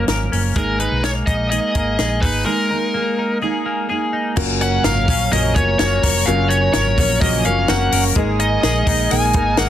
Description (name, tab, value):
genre	jangly indie pop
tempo	126 BPM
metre	4/4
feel	straight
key	F# major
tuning	A4 = 441 Hz
part	biting lead guitar	melody	0.0-9.7 s	A#4 to G#5	-20 LUFS	equal	overdrive, slapback echo, plate reverb
part	fingerpicked steel-string acoustic guitar	accompaniment	0.0-9.7 s	F#2 to A#4	-24 LUFS	right 6 dB	none
part	twelve-string electric guitar	arpeggios	0.0-9.7 s	F#2 to A#4	-24 LUFS	left 4 dB	slapback echo
part	vintage muted fingered electric bass	bass	0.0-9.7 s	E#1 to B1	-21 LUFS	equal	none
part	compact cocktail drum kit	drums	0.1-9.7 s	crash cymbal, hi-hat, kick drum, snare drum	-21 LUFS	left 1 dB	soft clipping on snare
part	dark upright piano	accompaniment	4.4-9.7 s	C#4 to A#4	-26 LUFS	left 10 dB	plate reverb
part	warm analog pad	sustained chords	4.4-9.7 s	A#4 to D#6	-30 LUFS	right 1 dB	chorus, plate reverb
room	light reverb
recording	dense, heavily limited modern master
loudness	-15 LUFS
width	side -11 dB against mid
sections	0.0-4.4 A section; 4.4-9.7 B section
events	none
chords	0.0 F#maj7; 0.6 G#sus2; 4.4 F#maj7; 8.2 G#sus2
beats	0.08 | 0.56 1.04 1.51 1.99 | 2.47 2.94 3.42 3.90 | 4.37 4.84 5.32 5.79 | 6.27 6.74 7.21 7.69 | 8.16 8.63 9.11 9.58